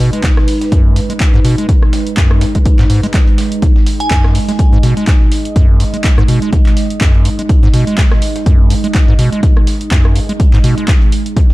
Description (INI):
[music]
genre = acid house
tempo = 124 BPM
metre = 4/4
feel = swing 56% on 16ths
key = G# minor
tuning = A4 = 440 Hz
[part]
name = warm analog pad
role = sustained chords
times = 0.0-11.5 s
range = G#3 to D#5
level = -19 LUFS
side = right 2 dB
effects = chorus, sidechain pumping
[part]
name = acid bass, square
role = riff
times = 0.0-11.4 s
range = F#2 to G#3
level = -15 LUFS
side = equal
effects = sidechain pumping, tape echo
[part]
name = dusty soul sampler-style drum kit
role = drums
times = 0.1-11.5 s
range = hi-hat, snare drum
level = -33 LUFS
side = equal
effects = none
[part]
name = punchy analog drum machine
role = drums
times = 0.1-11.5 s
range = handclaps, hi-hat, rim click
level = -22 LUFS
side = equal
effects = none
[part]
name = electronic kick drum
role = drums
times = 0.2-11.5 s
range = none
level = -10 LUFS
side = equal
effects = none
[part]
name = glassy synth bell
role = melody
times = 4.0-4.3 s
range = G#5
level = -21 LUFS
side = right 2 dB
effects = chorus, phaser, tape echo
[sound]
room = little or no reverb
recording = dark, warm production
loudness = -9 LUFS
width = side -18 dB against mid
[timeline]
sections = 0.0-11.5 A section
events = none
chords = 0.0 G#5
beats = 0.24 0.72 1.20 | 1.69 2.17 2.65 3.14 | 3.62 4.11 4.59 5.08 | 5.56 6.04 6.53 7.01 | 7.49 7.98 8.46 8.95 | 9.43 9.91 10.40 10.88 | 11.37